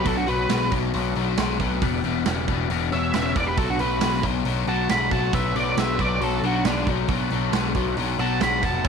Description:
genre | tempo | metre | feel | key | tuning
blues rock power trio and southern rock | 136 BPM | 4/4 | straight | B minor | A4 = 440 Hz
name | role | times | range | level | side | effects
octave-fuzz lead guitar | melody | 0.0-8.9 s | D4 to B5 | -26 LUFS | right 1 dB | distortion, slapback echo
dark smooth lead guitar | second line | 0.0-8.9 s | B3 to F#5 | -31 LUFS | right 13 dB | overdrive
overdriven tonewheel organ | sustained chords | 0.0-8.9 s | G3 to C#5 | -36 LUFS | right 11 dB | chorus vibrato, lush chorus
biting overdriven guitar | riff | 0.0-8.9 s | E2 to G#3 | -25 LUFS | left 15 dB | none
growling picked electric bass | bass | 0.0-8.9 s | E1 to B1 | -27 LUFS | right 1 dB | overdrive
big rock drum kit | drums | 0.1-8.9 s | hi-hat, kick drum, snare drum | -28 LUFS | right 5 dB | none
room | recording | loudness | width
light reverb, small room ambience | 1960s-style stereo with parts hard left and right | -20 LUFS | side -6 dB against mid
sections
0.0-8.9 A section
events
none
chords
0.0 Bm7; 1.8 Em7; 3.6 Bm7

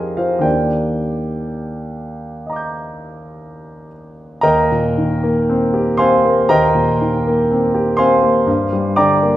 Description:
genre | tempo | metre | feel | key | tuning
classical, impressionist solo piano | 60 BPM | 4/4 | rubato | Eb major | A4 = 440 Hz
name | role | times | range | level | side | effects
warm concert grand piano | solo | 0.0-9.4 s | Eb2 to G6 | -14 LUFS | equal | none
room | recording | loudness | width
wet recital hall reverb, RT60 1.4 s | heard from further back in the room | -13 LUFS | side -14 dB against mid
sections
0.0-4.4 A section; 4.4-9.4 B section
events
none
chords
0.4 Ebmaj7; 4.4 Eb6; 8.5 Gm7

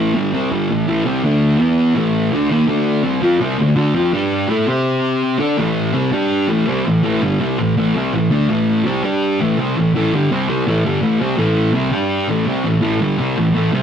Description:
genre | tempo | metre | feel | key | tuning
rock | 166 BPM | 4/4 | straight | unclear | A4 = 440 Hz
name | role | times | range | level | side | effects
thick fuzz guitar | solo | 0.0-13.8 s | G2 to D5 | -14 LUFS | equal | distortion
room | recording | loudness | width
moderate studio reverb, RT60 0.6 s | rough rehearsal-room recording, tube saturation | -14 LUFS | side -8 dB against mid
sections
0.0-5.6 A section; 5.6-11.4 B section; 11.4-13.8 C section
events
none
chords
0.0 A5; 1.2 D5; 1.6 E5; 2.0 A5; 2.7 D5; 4.1 G5; 4.5 A5; 4.7 C5; 5.4 D5; 5.6 A5; 6.1 G5; 6.5 A5; 9.0 G5; 9.4 A5; 11.9 G5; 12.3 A5

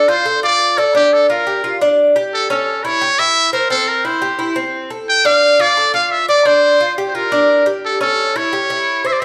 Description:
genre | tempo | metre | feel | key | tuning
latin | 174 BPM | 4/4 | straight | unclear | A4 = 440 Hz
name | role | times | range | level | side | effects
trumpet with metal mute | melody | 0.0-9.2 s | G4 to G5 | -18 LUFS | equal | none
Cuban tres | arpeggios | 0.0-9.2 s | C4 to D5 | -17 LUFS | equal | none
room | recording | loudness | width
moderate plate reverb, RT60 2.8 s | studio reverb | -15 LUFS | mono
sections
0.0-9.2 A section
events
none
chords
0.0 Dm; 0.9 Gm7; 2.3 A7; 3.7 C; 5.1 Dm; 6.5 Gm7; 7.8 A7

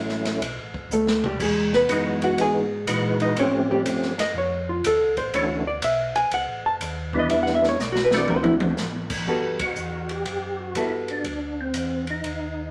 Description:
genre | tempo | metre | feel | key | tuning
soul jazz organ trio | 122 BPM | 4/4 | swing 67% on 8ths | G major from 9.3 s | A4 = 440 Hz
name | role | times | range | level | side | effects
percussive tonewheel organ | melody | 0.0-12.7 s | E3 to B4 | -28 LUFS | equal | slow rotary speaker, chorus vibrato
mellow tonewheel organ | bass | 0.0-12.7 s | F#1 to A#2 | -36 LUFS | equal | slow rotary speaker
swinging big-band drum kit | drums | 0.1-12.4 s | crash cymbal, hi-hat, kick drum, ride cymbal, snare drum, toms | -32 LUFS | equal | none
hollow-body jazz guitar | accompaniment | 0.9-11.3 s | G3 to A5 | -25 LUFS | equal | none
room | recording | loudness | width
wet studio reverb, RT60 0.6 s | none | -24 LUFS | mono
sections
0.0-9.3 A section; 9.3-12.7 B section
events
hollow-body jazz guitar solo 0.0-9.3; drum fill 0.9-1.4, 7.8-8.8; band accent 9.5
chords
0.4 Gadd9; 1.4 Emaj9; 3.4 A7alt; 5.3 Dmaj9; 7.3 Em7; 8.3 D9; 9.3 Gmaj9; 11.2 Dsus2

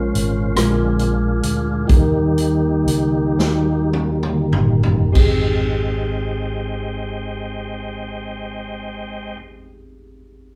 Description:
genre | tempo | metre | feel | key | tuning
slow gospel | 31-48 BPM (dotted quarters) | 6/8 | straight | Ab major | A4 = 440 Hz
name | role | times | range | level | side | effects
mellow tine electric piano | accompaniment | 0.0-10.6 s | Ab1 to Bb4 | -26 LUFS | equal | none
tonewheel organ | sustained chords | 0.0-9.4 s | Db3 to G5 | -25 LUFS | equal | chorus vibrato, stopped rotary speaker
fingered electric bass | bass | 0.0-9.4 s | G1 to Eb2 | -26 LUFS | equal | none
swinging big-band drum kit | drums | 0.1-5.5 s | crash cymbal, hi-hat, kick drum, rim click, snare drum, toms | -21 LUFS | equal | none
room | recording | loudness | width
moderate large studio reverb, RT60 0.9 s | band playing live in one room | -19 LUFS | mono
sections
0.0-5.2 A section; 5.2-9.1 B section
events
slowing down 0.0-5.2; tonewheel organ solo 0.0-5.2; drum fill 3.4-5.2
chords
0.0 Bbm7; 0.6 Bb7; 1.9 Eb; 5.2 Abmaj7

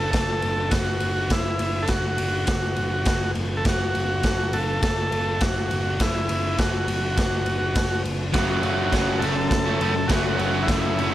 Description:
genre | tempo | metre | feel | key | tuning
garage rock duo or trio | 102 BPM | 4/4 | straight | F# minor | A4 = 445 Hz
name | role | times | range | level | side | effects
overdriven combo organ | melody | 0.0-11.1 s | E4 to A4 | -26 LUFS | equal | none
picked electric bass | bass | 0.0-11.1 s | F#1 | -28 LUFS | equal | tube saturation
raw garage drum kit | drums | 0.1-11.1 s | kick drum, ride cymbal, snare drum | -24 LUFS | equal | none
crunchy overdriven guitar | riff | 8.3-11.1 s | F#2 to C#4 | -24 LUFS | equal | none
room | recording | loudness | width
light reverb, small room ambience | faint mains hum | -21 LUFS | side -13 dB against mid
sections
0.0-11.1 A section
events
none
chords
0.0 F#m

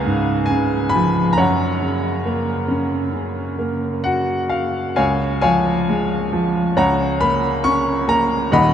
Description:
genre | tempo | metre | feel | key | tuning
classical, lyrical solo piano | 68 BPM | 4/4 | rubato | F# major | A4 = 440 Hz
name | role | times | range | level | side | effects
clear upright piano | solo | 0.0-8.7 s | D#1 to C#6 | -16 LUFS | equal | none
room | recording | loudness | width
wet huge ambient reverb, RT60 7.7 s | in a vast, echoing space | -16 LUFS | side -9 dB against mid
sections
0.0-5.0 A section; 5.0-8.7 B section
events
none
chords
0.0 C#7; 1.4 F#; 5.0 C#; 6.8 F#/C#

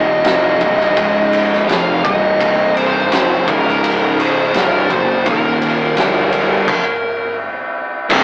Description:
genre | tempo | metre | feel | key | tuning
stoner and doom metal | 84 BPM | 4/4 | straight | C minor | A4 = 439 Hz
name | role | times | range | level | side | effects
fuzz lead guitar | melody | 0.0-7.4 s | Bb4 to F5 | -20 LUFS | equal | wah, distortion
tonewheel organ | sustained chords | 0.0-6.7 s | C3 to D5 | -28 LUFS | equal | none
thick fuzz guitar | riff | 0.0-8.2 s | C2 to G3 | -24 LUFS | equal | distortion
thick fuzz guitar | riff | 0.0-8.2 s | C2 to G3 | -24 LUFS | equal | distortion
fuzz picked electric bass | bass | 0.0-8.2 s | C1 to G1 | -23 LUFS | equal | overdrive
oversized low-tuned drum kit | drums | 0.2-8.2 s | crash cymbal, kick drum, ride cymbal, snare drum | -20 LUFS | equal | none
sludgy distorted guitar | riff | 8.1-8.2 s | C2 to C3 | -15 LUFS | equal | overdrive
room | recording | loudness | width
light reverb | rough rehearsal-room recording, warm saturation, AM radio sound | -15 LUFS | mono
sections
0.0-8.1 A section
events
stop 6.7-8.1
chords
0.0 Cm; 1.0 Db5; 1.7 Cm; 3.5 Db5; 4.5 Cm; 5.3 Eb5; 6.0 G5; 6.7 N.C.

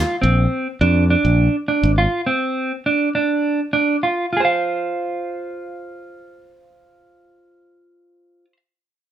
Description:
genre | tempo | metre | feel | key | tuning
progressive instrumental, progressive | 206 BPM (eighths) | 7/8 | straight | unclear | A4 = 440 Hz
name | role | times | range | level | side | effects
mellow electric guitar | arpeggios | 0.0-8.6 s | C4 to F5 | -18 LUFS | right 2 dB | none
modern bright fingered electric bass | bass | 0.2-2.1 s | Ab1 to F2 | -16 LUFS | equal | none
room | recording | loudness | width
moderate studio reverb, RT60 0.6 s | none | -16 LUFS | side -11 dB against mid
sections
0.0-4.3 A section; 4.3-8.4 B section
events
none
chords
0.2 Bb (rootless); 4.3 F5

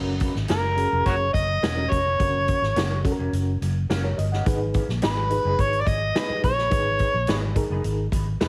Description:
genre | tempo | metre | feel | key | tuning
uptempo 1960s-style soul | 106 BPM | 4/4 | straight | F# major | A4 = 442 Hz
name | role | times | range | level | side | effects
reed electric piano | accompaniment | 0.0-8.1 s | C#4 to F#5 | -32 LUFS | equal | fast tremolo
vintage muted fingered electric bass | bass | 0.0-8.5 s | E1 to A#1 | -28 LUFS | equal | none
swinging big-band drum kit | drums | 0.2-8.5 s | hi-hat, kick drum, snare drum | -29 LUFS | equal | none
overdriven harmonica | melody | 0.5-7.5 s | F#4 to D#5 | -26 LUFS | equal | none
electric guitar through a small old amp | stabs | 0.5-8.5 s | A#3 to B4 | -38 LUFS | equal | lush chorus, tape echo
room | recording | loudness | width
light reverb | heavily compressed radio sound, vinyl crackle | -23 LUFS | mono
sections
0.0-8.5 A section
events
none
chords
0.0 F#; 4.5 G#m

